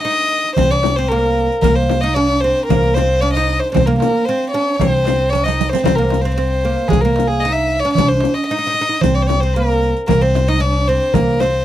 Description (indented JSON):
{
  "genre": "Arabic maqam ensemble",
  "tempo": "114 BPM",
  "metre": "4/4",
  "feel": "straight",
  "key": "C maqam saba",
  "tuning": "A4 = 440 Hz",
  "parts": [
    { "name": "warm violin", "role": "melody", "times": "0.0-11.6 s", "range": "Ab4 to E5", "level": "-17 LUFS", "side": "left 1 dB", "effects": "none" },
    { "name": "oud", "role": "second line", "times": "0.0-11.6 s", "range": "Ab3 to Eb4", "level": "-20 LUFS", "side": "right 4 dB", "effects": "none" },
    { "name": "riq", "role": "percussion", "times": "0.1-11.5 s", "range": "none", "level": "-27 LUFS", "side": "right 18 dB", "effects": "none" },
    { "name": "darbuka", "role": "percussion", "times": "0.2-11.5 s", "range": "none", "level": "-21 LUFS", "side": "right 6 dB", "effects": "none" },
    { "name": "upright bass", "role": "bass", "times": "0.6-11.6 s", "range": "C2", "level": "-18 LUFS", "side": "equal", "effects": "none" },
    { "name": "frame drum", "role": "percussion", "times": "0.6-11.5 s", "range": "none", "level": "-21 LUFS", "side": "left 10 dB", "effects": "none" }
  ],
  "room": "little or no reverb",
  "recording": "dry, close 1970s-style studio recording",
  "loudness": "-13 LUFS",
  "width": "side -12 dB against mid",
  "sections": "0.0-11.6 A section",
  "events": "drum fill 5.3-5.9",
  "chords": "none"
}